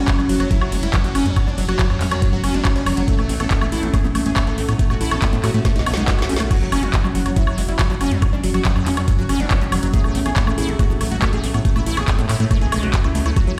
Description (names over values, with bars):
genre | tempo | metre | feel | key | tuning
psychedelic trance | 140 BPM | 4/4 | straight | unclear | A4 = 440 Hz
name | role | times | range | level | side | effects
supersaw stab | melody | 0.0-13.5 s | F#3 to A4 | -29 LUFS | equal | phaser, sidechain pumping, dub echo
evolving wavetable pad | sustained chords | 0.0-13.6 s | F#3 to C#4 | -29 LUFS | equal | phaser, built-in reverb, sidechain pumping
liquid acid bass | riff | 0.0-13.5 s | F#3 to F#4 | -28 LUFS | equal | chorus, sidechain pumping, dub echo
round analog bass | bass | 0.0-13.5 s | E1 to A2 | -24 LUFS | equal | none
electronic kick drum | drums | 0.1-13.4 s | none | -21 LUFS | equal | none
garage drum kit | drums | 0.1-13.4 s | crash cymbal, handclaps, hi-hat, snare drum, woodblock | -28 LUFS | equal | none
swell | sound effects | 5.9-6.5 s | none | -34 LUFS | equal | none
room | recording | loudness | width
light reverb | played on a big sound system in a bare room, stone room reverb | -19 LUFS | mono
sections
0.0-13.6 A section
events
drum fill 5.7-6.5; swell 5.9-6.5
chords
0.0 F#5; 3.1 A5; 6.5 F#5; 9.9 A5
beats
0.08 0.51 0.94 | 1.36 1.79 2.22 2.65 | 3.08 3.51 3.94 4.36 | 4.79 5.22 5.65 6.08 | 6.51 6.94 7.36 7.79 | 8.22 8.65 9.08 9.51 | 9.94 10.36 10.79 11.22 | 11.65 12.08 12.51 12.94 | 13.36